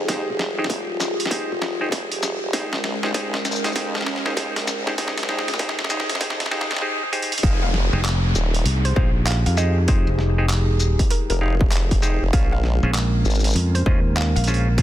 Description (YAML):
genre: glitch hop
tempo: 98 BPM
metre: 4/4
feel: swing 63% on 16ths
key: F minor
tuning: A4 = 441 Hz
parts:
  - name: dark analog pad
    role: sustained chords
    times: 0.0-14.8 s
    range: Ab3 to Bb4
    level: -29 LUFS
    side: right 1 dB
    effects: chorus, sidechain pumping
  - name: formant-sweep wobble bass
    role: bass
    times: 0.0-13.5 s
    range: Eb1 to F2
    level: -25 LUFS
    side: equal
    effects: chorus, high-pass filter
  - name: mellow clav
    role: stabs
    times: 0.1-14.8 s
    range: Db4 to F5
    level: -28 LUFS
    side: equal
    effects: sidechain pumping, ping-pong delay
  - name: boom bap sampler-style drum kit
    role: drums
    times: 0.1-14.8 s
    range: handclaps, hi-hat, shaker, snare drum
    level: -26 LUFS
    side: equal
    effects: overdrive, high-pass filter on snare, small room ambience, high-pass filter on hats, high-pass filter on perc
  - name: electronic kick drum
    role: drums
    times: 0.1-14.8 s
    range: none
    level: -21 LUFS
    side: equal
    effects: distortion, high-pass filter on kick, small room ambience
  - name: woody wave-folded pluck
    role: melody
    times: 7.4-14.4 s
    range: Bb4 to F5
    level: -32 LUFS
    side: equal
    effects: chorus, ping-pong delay
  - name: downlifter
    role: sound effects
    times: 7.5-12.3 s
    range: none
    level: -30 LUFS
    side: equal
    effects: none
  - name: modern bright fingered electric bass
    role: bass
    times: 7.9-14.8 s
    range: F1 to F2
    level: -19 LUFS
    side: equal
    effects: none
room: light reverb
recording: dense, heavily limited modern master, high-pass filter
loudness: -19 LUFS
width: side -13 dB against mid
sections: 0.0-7.4 A section; 7.4-14.8 B section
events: build-up 0.0-7.4; drum fill 0.0-6.8, 7.1-7.4; filter sweep 0.0-7.4; drop 7.4-14.8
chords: 0.0 Fm9; 2.5 Bbm7; 7.4 Fm9; 12.3 Bbm7